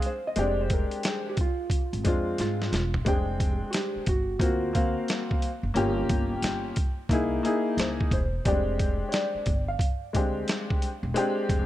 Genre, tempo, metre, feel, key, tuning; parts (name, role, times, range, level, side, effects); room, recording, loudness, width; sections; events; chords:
hip hop, jazz-hop; 89 BPM; 4/4; swing 65% on 16ths; F dorian; A4 = 440 Hz
hollow-body jazz guitar; melody; 0.0-10.8 s; F4 to F5; -33 LUFS; right 1 dB; tape echo
warm upright piano; accompaniment; 0.0-11.7 s; G3 to G5; -28 LUFS; left 2 dB
boom bap sampler-style drum kit; drums; 0.0-11.7 s; hi-hat, kick drum, snare drum, toms; -27 LUFS; equal
upright bass; bass; 0.4-11.7 s; E1 to Ab2; -31 LUFS; equal
light reverb; dark, warm production; -24 LUFS; side -14 dB against mid
0.0-3.1 A section; 3.1-11.7 B section
hollow-body jazz guitar solo 0.0-3.1; drum fill 2.4-3.1
0.0 Fm69; 4.4 D7alt; 5.8 Gm7b5; 7.1 C7alt; 8.5 Fm69